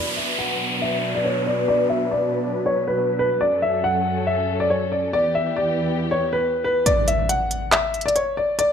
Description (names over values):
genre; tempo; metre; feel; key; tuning
hip hop, trap; 139 BPM; 4/4; half-time; B minor; A4 = 440 Hz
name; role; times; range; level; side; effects
warm concert grand piano; melody; 0.0-8.7 s; B4 to F#5; -21 LUFS; left 1 dB; low-pass filter, ping-pong delay
warm studio string section; sustained chords; 0.0-6.8 s; E2 to B4; -25 LUFS; equal; low-pass filter
downlifter and impact; sound effects; 0.0-3.4, 6.9-8.6 s; none; -27 LUFS; equal; none
trap drum kit; drums; 6.9-8.7 s; handclaps, hi-hat; -22 LUFS; right 1 dB; none
room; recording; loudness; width
moderate digital room reverb, RT60 1.0 s; none; -19 LUFS; side -7 dB against mid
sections
0.0-6.9 A section; 6.9-8.7 B section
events
filter sweep 0.0-6.9; kick muted 6.9-8.7; impact 6.9-8.6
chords
0.0 Bm; 3.4 F#m; 5.1 Em; 6.9 N.C.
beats
0.39 0.82 1.25 | 1.68 2.11 2.54 2.98 | 3.41 3.84 4.27 4.70 | 5.13 5.57 6.00 6.43 | 6.86 7.29 7.72 8.16 | 8.59